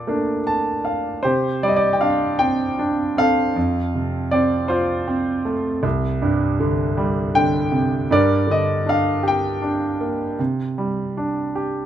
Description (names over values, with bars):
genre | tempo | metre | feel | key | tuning
classical, lyrical solo piano | 52 BPM (dotted quarters) | 6/8 | rubato | unclear | A4 = 440 Hz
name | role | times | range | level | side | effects
clear concert grand piano | solo | 0.0-11.9 s | C2 to A5 | -18 LUFS | right 1 dB | none
room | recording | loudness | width
light reverb | close, detailed microphones | -18 LUFS | side -10 dB against mid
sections
0.0-1.2 A section; 1.2-11.9 B section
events
grand piano fill 0.1-1.2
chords
0.0 Bbmaj7; 1.2 Csus2; 3.6 F; 5.8 Csus2; 8.1 Gm; 10.4 Csus2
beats
0.09 | 1.25 2.41 | 3.56 4.71 | 5.85 6.98 | 8.10 9.23 | 10.39 11.56